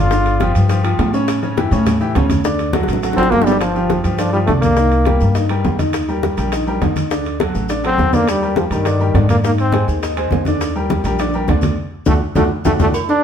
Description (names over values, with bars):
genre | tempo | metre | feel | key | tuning
latin, salsa | 206 BPM | 4/4 | straight | G minor | A4 = 440 Hz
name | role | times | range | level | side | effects
bright trombone | melody | 0.0-0.6, 3.2-5.5, 7.9-9.9, 12.1-13.2 s | Eb3 to F4 | -18 LUFS | left 1 dB | none
bright upright piano | accompaniment | 0.0-13.2 s | C#3 to Eb5 | -20 LUFS | equal | none
upright bass | bass | 0.0-12.9 s | G1 to A2 | -18 LUFS | equal | none
bongos and cowbell | percussion | 0.1-13.2 s | none | -25 LUFS | left 5 dB | none
congas | percussion | 0.1-13.2 s | none | -22 LUFS | equal | none
maracas | percussion | 0.1-13.2 s | none | -37 LUFS | left 3 dB | none
timbales and agogo bells | percussion | 0.3-13.1 s | none | -27 LUFS | right 5 dB | none
room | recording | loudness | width
wet studio reverb, RT60 1.0 s | band playing live in one room | -14 LUFS | side -8 dB against mid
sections
0.0-3.6 A section; 3.6-12.9 B section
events
drum fill 2.7-3.6, 12.2-12.9; band accent 11.8-12.9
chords
0.1 G5; 1.3 A7; 2.4 D; 3.6 G5; 4.8 Cm7; 5.9 Eb; 7.1 D; 8.3 Ebmaj7; 9.4 Ab; 10.6 Ebmaj7; 11.8 D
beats
| 0.12 0.41 0.70 0.99 | 1.28 1.57 1.86 2.15 | 2.44 2.73 3.02 3.32 | 3.61 3.90 4.19 4.48 | 4.77 5.07 5.36 5.65 | 5.94 6.23 6.52 6.82 | 7.11 7.40 7.69 7.98 | 8.28 8.57 8.86 9.15 | 9.44 9.73 10.03 10.32 | 10.61 10.90 11.19 11.48 | 11.77 12.06 12.36 12.65 | 12.94 13.23